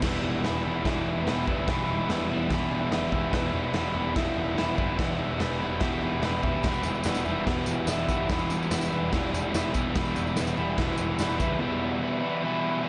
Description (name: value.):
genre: garage rock duo or trio.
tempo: 145 BPM.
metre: 4/4.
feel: straight.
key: E minor.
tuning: A4 = 440 Hz.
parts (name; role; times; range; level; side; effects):
crunchy overdriven guitar; riff; 0.0-12.9 s; E2 to E4; -29 LUFS; equal; none.
fuzz picked electric bass; bass; 0.0-11.6 s; E1 to C#2; -37 LUFS; equal; overdrive, tube saturation.
raw garage drum kit; drums; 0.0-11.5 s; crash cymbal, kick drum, snare drum, toms; -33 LUFS; equal; none.
tambourine; percussion; 6.6-11.5 s; none; -44 LUFS; equal; none.
room: light reverb.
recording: nothing above 10.4 kHz.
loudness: -27 LUFS.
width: mono.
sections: 0.0-12.9 A section.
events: none.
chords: 0.0 Em.